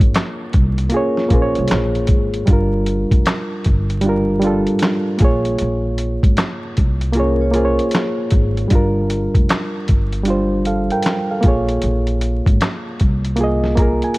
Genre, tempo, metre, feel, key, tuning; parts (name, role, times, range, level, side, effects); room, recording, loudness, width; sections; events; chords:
lo-fi hip hop; 77 BPM; 4/4; swing 65% on 16ths; A4 = 440 Hz
reed electric piano; accompaniment; 0.0-14.2 s; G3 to Bb5; -19 LUFS; right 1 dB; cassette tape, low-pass filter
upright bass; bass; 0.0-14.0 s; F1 to C2; -20 LUFS; equal
lo-fi sampler-style drum kit; drums; 0.0-14.2 s; handclaps, hi-hat, kick drum, snare drum; -17 LUFS; equal
vibraphone with medium mallets; second line; 0.9-2.4, 7.2-8.7 s; Db4 to Db5; -26 LUFS; left 4 dB; low-pass filter, analog delay
light reverb; vinyl crackle; -15 LUFS; side -20 dB against mid
0.0-14.2 A section
reed electric piano fill 13.4-14.2
0.0 Bbm7; 2.5 Gm7; 5.2 Bbm7; 8.7 Gm7; 11.4 Bbm7